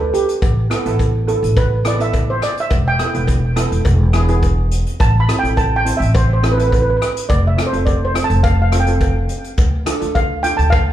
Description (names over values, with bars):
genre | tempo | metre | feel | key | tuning
calypso | 105 BPM | 4/4 | straight | A minor | A4 = 442 Hz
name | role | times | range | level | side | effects
steel pan | melody | 0.0-10.9 s | G4 to B5 | -20 LUFS | right 2 dB | slapback echo, tape echo
steel pan | accompaniment | 0.0-10.8 s | B3 to C5 | -24 LUFS | right 3 dB | slapback echo
upright bass | bass | 0.0-10.9 s | E1 to D2 | -16 LUFS | equal | none
unplugged drum kit | drums | 0.1-10.9 s | hi-hat, kick drum, rim click | -20 LUFS | equal | none
cowbell | percussion | 0.4-10.9 s | none | -29 LUFS | left 5 dB | slapback echo
room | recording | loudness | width
small room ambience | live gig heard through the venue's PA, club ambience | -14 LUFS | side -12 dB against mid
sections
0.0-10.9 A section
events
steel pan solo 0.0-10.9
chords
0.4 Asus2; 2.7 Esus4; 3.9 E; 5.0 Am; 7.3 F; 9.6 Dm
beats
| 0.42 1.00 1.57 2.14 | 2.71 3.29 3.86 4.43 | 5.01 5.58 6.15 6.72 | 7.30 7.87 8.44 9.01 | 9.59 10.16 10.73